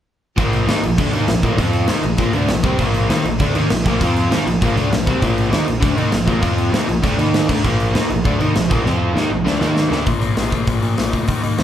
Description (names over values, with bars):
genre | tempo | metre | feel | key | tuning
punk rock | 198 BPM | 4/4 | straight | Bb major | A4 = 435 Hz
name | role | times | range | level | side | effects
distorted electric guitar | riff | 0.4-10.1 s | Bb2 to F4 | -24 LUFS | right 5 dB | distortion
overdriven electric guitar | riff | 0.4-10.1 s | Bb2 to F4 | -23 LUFS | right 2 dB | none
overdriven semi-hollow guitar | riff | 0.4-11.6 s | Bb2 to F4 | -21 LUFS | left 6 dB | none
growling picked electric bass | bass | 0.4-11.6 s | Bb1 to Bb2 | -24 LUFS | equal | overdrive
big rock drum kit | drums | 0.4-11.6 s | crash cymbal, hi-hat, kick drum, snare drum | -19 LUFS | equal | none
room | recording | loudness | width
moderate large studio reverb, RT60 1.4 s | band playing live in one room | -15 LUFS | side -10 dB against mid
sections
0.4-10.1 A section; 10.1-11.6 B section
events
drum fill 8.9-10.1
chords
0.4 Bb; 1.6 F5; 1.9 Bb; 4.0 F5; 4.3 Bb; 6.4 F5; 6.7 Bb; 7.2 Eb5; 7.5 Bb; 8.9 F5; 9.2 Bb; 9.6 Eb5; 9.9 D5; 10.1 Bb5